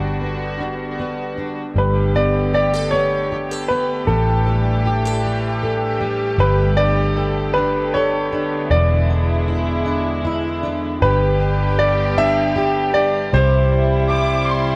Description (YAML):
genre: six-eight pop ballad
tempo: 52 BPM (dotted quarters)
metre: 6/8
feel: straight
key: unclear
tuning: A4 = 444 Hz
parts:
  - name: warm concert grand piano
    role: melody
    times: 0.0-14.8 s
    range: A4 to E5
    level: -23 LUFS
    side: equal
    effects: delay
  - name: fingerpicked plugged-in steel-string acoustic guitar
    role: accompaniment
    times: 0.0-14.8 s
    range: E2 to A4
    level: -25 LUFS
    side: equal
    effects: double-tracked
  - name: warm studio string section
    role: sustained chords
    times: 0.0-14.8 s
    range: C3 to G4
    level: -27 LUFS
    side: equal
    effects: none
  - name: vintage muted fingered electric bass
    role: bass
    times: 0.0-14.8 s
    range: E1 to C2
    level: -23 LUFS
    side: equal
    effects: none
  - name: dark studio violin section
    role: second line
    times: 14.1-14.8 s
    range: C6 to D6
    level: -24 LUFS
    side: equal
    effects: none
room: moderate lush hall reverb, RT60 2.2 s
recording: worn, warbling old tape, cassette tape, warbly pitch drift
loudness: -19 LUFS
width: mono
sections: 0.0-1.8 A section; 1.8-11.0 B section; 11.0-14.8 C section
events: none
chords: 0.0 Gmaj7; 1.8 Gadd9; 4.1 A7sus4; 6.4 Gadd9; 8.7 E7; 11.0 G; 13.3 Cmaj7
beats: 0.59 | 1.75 2.91 | 4.07 5.23 | 6.39 7.55 | 8.70 9.86 | 11.02 12.17 | 13.33 14.48